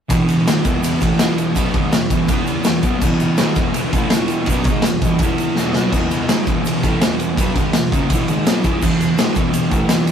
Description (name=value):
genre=garage rock duo or trio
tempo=165 BPM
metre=4/4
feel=straight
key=E major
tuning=A4 = 441 Hz
part: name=fuzz guitar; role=riff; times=0.1-10.1 s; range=E2 to E4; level=-18 LUFS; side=equal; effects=distortion
part: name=raw garage drum kit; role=drums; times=0.1-10.1 s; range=crash cymbal, kick drum, ride cymbal, snare drum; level=-17 LUFS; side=equal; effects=none
part: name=tube shaker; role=percussion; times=0.1-10.1 s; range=none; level=-35 LUFS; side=right 4 dB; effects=none
room=little or no reverb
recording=rough rehearsal-room recording, warm saturation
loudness=-15 LUFS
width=side -8 dB against mid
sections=0.1-10.1 A section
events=drum fill 5.6-5.9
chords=0.1 E